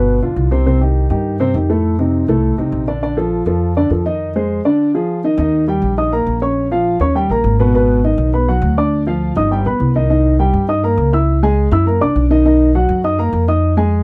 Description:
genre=Afro-Cuban jazz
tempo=204 BPM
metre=4/4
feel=straight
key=Bb major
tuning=A4 = 439 Hz
part: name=dark upright piano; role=accompaniment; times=0.0-14.0 s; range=A2 to Fb6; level=-18 LUFS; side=equal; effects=none
part: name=upright bass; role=bass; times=0.0-14.0 s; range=G1 to G2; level=-19 LUFS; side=equal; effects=none
room=little or no reverb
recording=dry, close 1970s-style studio recording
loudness=-15 LUFS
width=mono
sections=0.0-5.4 A section; 5.4-14.0 B section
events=none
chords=0.1 G7; 0.7 Cm; 1.8 F6; 3.0 Bbmaj7; 4.2 Fm7; 4.8 Ddim; 5.4 Eb; 6.6 Bbm; 7.2 Eb; 7.7 Abm7; 8.9 Ebmaj9; 9.5 Gaug; 10.1 Cm7; 11.3 Dbm; 11.9 Gbaug; 12.5 Bmaj7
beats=0.07 0.37 | 0.67 0.96 1.25 1.55 | 1.84 2.14 2.43 2.73 | 3.02 3.32 3.62 3.91 | 4.21 4.50 4.79 5.09 | 5.38 5.68 5.97 6.27 | 6.56 6.86 7.15 7.45 | 7.74 8.04 8.33 8.62 | 8.92 9.21 9.51 9.80 | 10.10 10.39 10.69 10.98 | 11.28 11.57 11.87 12.16 | 12.45 12.75 13.04 13.33 | 13.63 13.92

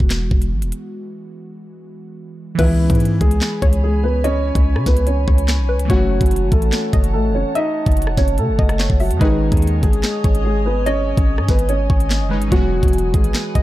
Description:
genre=hip hop, drill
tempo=145 BPM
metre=4/4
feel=half-time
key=C# minor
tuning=A4 = 441 Hz
part: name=glassy digital keys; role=accompaniment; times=0.0-13.6 s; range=D#3 to G#4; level=-28 LUFS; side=right 1 dB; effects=chorus
part: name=hard-hitting 808-style bass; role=bass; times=0.0-13.6 s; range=E1 to C#3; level=-18 LUFS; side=equal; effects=none
part: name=drill drum kit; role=drums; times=0.0-13.6 s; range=crash cymbal, handclaps, hi-hat, kick drum, rim click, snare drum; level=-17 LUFS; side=equal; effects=none
part: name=dark concert grand piano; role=melody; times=2.6-13.6 s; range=D#3 to D#5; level=-21 LUFS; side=equal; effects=none
part: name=soft round pluck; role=second line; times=2.6-13.6 s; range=B4 to E5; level=-28 LUFS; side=left 3 dB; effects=chorus, tape echo
part: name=glassy FM pad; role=sustained chords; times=3.3-13.6 s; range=B4 to D#6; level=-30 LUFS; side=equal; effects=ensemble chorus, built-in reverb
room=little or no reverb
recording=dark, warm production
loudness=-14 LUFS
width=side -15 dB against mid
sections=0.0-2.6 A section; 2.6-13.6 B section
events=break 0.9-2.6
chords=0.0 Eadd9; 2.6 C#m7; 5.9 F#m7; 9.2 G#sus4; 12.5 Eadd9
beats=0.10 0.52 | 0.93 1.35 1.76 2.17 | 2.59 3.00 3.42 3.83 | 4.24 4.66 5.07 5.48 | 5.90 6.31 6.73 7.14 | 7.55 7.97 8.38 8.79 | 9.21 9.62 10.04 10.45 | 10.86 11.28 11.69 12.11 | 12.52 12.93 13.35

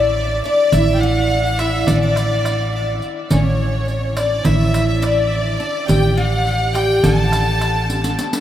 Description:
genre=Turkish makam ensemble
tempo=209 BPM (eighths)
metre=9/8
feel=straight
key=A makam hicaz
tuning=A4 = 440 Hz
part: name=oud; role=melody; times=0.0-8.1 s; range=C#4 to A4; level=-20 LUFS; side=left 1 dB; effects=none
part: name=clear violin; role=second line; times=0.0-8.2 s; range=C#5 to A5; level=-25 LUFS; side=left 1 dB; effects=none
part: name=warm studio violin section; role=second line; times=0.0-8.2 s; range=C#5 to A5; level=-24 LUFS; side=right 1 dB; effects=slapback echo
part: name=upright bass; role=bass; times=0.0-8.1 s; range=A1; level=-19 LUFS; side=equal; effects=none
part: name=riq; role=percussion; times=0.4-8.4 s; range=none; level=-29 LUFS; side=equal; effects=none
part: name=darbuka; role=percussion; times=0.7-8.3 s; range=none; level=-22 LUFS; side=right 2 dB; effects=none
room=wet huge ambient reverb, RT60 8.1 s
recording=in a vast, echoing space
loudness=-15 LUFS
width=side -11 dB against mid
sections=0.0-8.4 A section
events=drum fill 7.9-8.4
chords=none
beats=0.15 0.44 | 0.72 1.01 1.30 1.59 1.87 2.16 2.45 2.73 3.02 | 3.31 3.60 3.88 4.17 4.46 4.74 5.03 5.32 5.60 | 5.89 6.18 6.46 6.75 7.04 7.32 7.61 7.90 8.18

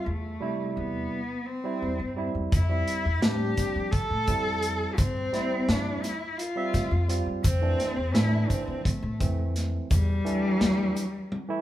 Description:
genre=progressive instrumental, band music in an uneven meter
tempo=171 BPM (eighths)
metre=7/8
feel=straight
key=unclear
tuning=A4 = 436 Hz
part: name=warm cello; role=melody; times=0.0-11.6 s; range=G3 to A4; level=-30 LUFS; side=left 1 dB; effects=none
part: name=barky tine electric piano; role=accompaniment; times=0.0-11.6 s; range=C3 to E5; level=-33 LUFS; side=right 4 dB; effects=none
part: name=upright bass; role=bass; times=0.1-10.9 s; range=D2 to F3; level=-28 LUFS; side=equal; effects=none
part: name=vintage drum kit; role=drums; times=2.5-11.5 s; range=hi-hat, kick drum, snare drum, toms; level=-28 LUFS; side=equal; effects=none
part: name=egg shaker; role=percussion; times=2.5-11.3 s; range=none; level=-46 LUFS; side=left 6 dB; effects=none
room=moderate large studio reverb, RT60 1.4 s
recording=band playing live in one room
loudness=-24 LUFS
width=side -13 dB against mid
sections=0.0-11.6 A section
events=drum fill 11.3-11.6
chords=0.1 Am9/E; 2.5 Fmaj7; 5.0 G7sus4; 7.4 Fmaj7; 9.9 Em7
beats=| 0.07 0.42 0.77 1.12 1.47 1.82 2.17 | 2.52 2.87 3.23 3.58 3.93 4.28 4.63 | 4.98 5.33 5.69 6.04 6.39 6.74 7.09 | 7.44 7.79 8.15 8.50 8.85 9.20 9.55 | 9.90 10.26 10.61 10.96 11.31

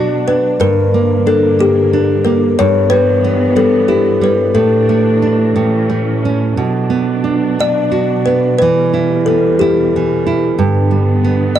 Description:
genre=children's music, lullaby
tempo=60 BPM (dotted quarters)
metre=6/8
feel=rubato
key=unclear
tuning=A4 = 444 Hz
part: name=kalimba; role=melody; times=0.0-11.6 s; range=G4 to D5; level=-14 LUFS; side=left 4 dB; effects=none
part: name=nylon-string guitar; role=accompaniment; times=0.0-11.6 s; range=G2 to F#4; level=-15 LUFS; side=right 5 dB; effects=none
part: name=dark studio string section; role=sustained chords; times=0.0-11.6 s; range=E2 to D4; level=-20 LUFS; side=left 1 dB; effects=none
room=small room ambience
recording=dry, close 1970s-style studio recording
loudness=-11 LUFS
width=side -10 dB against mid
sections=0.0-11.6 A section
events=none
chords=0.0 Bm; 0.6 Gm; 2.6 Em/G; 4.6 Asus4; 5.6 A; 6.6 Bm; 8.6 Em; 10.6 G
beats=| 0.61 1.60 | 2.58 3.56 | 4.56 5.57 | 6.58 7.59 | 8.60 9.59 | 10.57 11.57

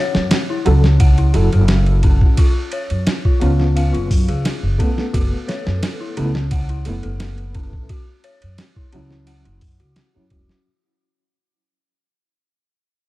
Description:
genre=trip hop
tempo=87 BPM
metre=4/4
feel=straight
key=unclear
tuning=A4 = 440 Hz
part: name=dark detuned synth bell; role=arpeggios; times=0.0-10.7 s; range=C#4 to F#5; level=-27 LUFS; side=left 4 dB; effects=chorus, low-pass filter, ping-pong delay
part: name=boom bap sampler-style drum kit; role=drums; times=0.1-10.6 s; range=hi-hat, kick drum, ride cymbal, snare drum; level=-18 LUFS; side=equal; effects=small room ambience
part: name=upright bass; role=bass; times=0.2-10.5 s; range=E1 to F#2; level=-16 LUFS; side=equal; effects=none
part: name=felt-muted upright piano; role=accompaniment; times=0.7-10.6 s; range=F#3 to A4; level=-24 LUFS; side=right 1 dB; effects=tremolo, vintage 12-bit sampler grit, low-pass filter, tape echo
room=digital ambience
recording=dark, warm production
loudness=-14 LUFS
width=side -18 dB against mid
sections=0.0-10.7 A section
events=fade-out 0.0-10.7; filter sweep on felt piano 0.0-10.7; filter sweep on synth bell 0.0-10.7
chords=0.0 F#m7; 2.4 C#7; 5.1 Asus2/F#; 7.9 C#madd11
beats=0.31 1.00 1.69 | 2.38 3.07 3.76 4.45 | 5.14 5.83 6.52 7.21 | 7.90 8.59 9.28 9.96

